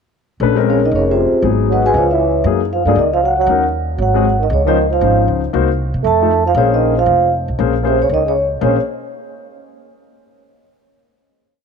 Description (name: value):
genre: jazz, small-group swing and bop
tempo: 234 BPM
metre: 4/4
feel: swing 60% on 8ths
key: Bb minor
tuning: A4 = 440 Hz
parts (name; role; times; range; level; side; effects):
- warm concert grand piano; accompaniment; 0.4-8.8 s; F3 to C5; -19 LUFS; left 12 dB; none
- upright bass; bass; 0.4-8.8 s; F1 to C3; -18 LUFS; right 1 dB; none
- vibraphone with soft mallets; melody; 0.7-8.8 s; C4 to A5; -17 LUFS; left 2 dB; none
- trombone with cup mute; second line; 0.7-8.8 s; C3 to Db4; -19 LUFS; right 14 dB; none
room: light reverb, studio ambience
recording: 1960s-style stereo with parts hard left and right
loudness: -12 LUFS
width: side -6 dB against mid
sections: 0.4-8.6 A section; 8.6-9.6 final chord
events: none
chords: 0.4 Bbm9; 1.4 Abm7; 1.9 Db7#9; 2.5 Gb69; 3.5 Ebm7; 4.0 Ab7; 4.5 Dbmaj9; 5.5 Cm7b5; 6.0 F7; 6.6 Bbm9